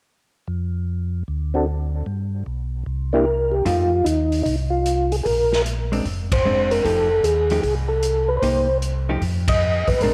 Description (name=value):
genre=soul jazz organ trio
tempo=151 BPM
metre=4/4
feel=swing 66% on 8ths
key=F mixolydian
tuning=A4 = 443 Hz
part: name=mellow tonewheel organ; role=bass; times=0.5-10.1 s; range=F1 to G2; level=-26 LUFS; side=equal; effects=slow rotary speaker
part: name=percussive tonewheel organ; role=melody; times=1.5-10.1 s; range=Bb3 to Eb5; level=-22 LUFS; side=equal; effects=slow rotary speaker, chorus vibrato
part: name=hollow-body jazz guitar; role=accompaniment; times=3.7-10.1 s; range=F3 to G4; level=-29 LUFS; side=equal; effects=none
part: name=swinging big-band drum kit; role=drums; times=3.7-10.1 s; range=hi-hat, kick drum, ride cymbal, snare drum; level=-29 LUFS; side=equal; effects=none
room=light reverb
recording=none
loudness=-21 LUFS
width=mono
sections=0.5-3.7 A section; 3.7-10.1 B section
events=band accent 6.2, 9.4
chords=0.5 N.C.; 2.1 G; 2.9 C7(no3); 3.7 F9; 5.3 Bb9; 6.8 F9; 8.4 Cm7; 9.2 Ebsus2/F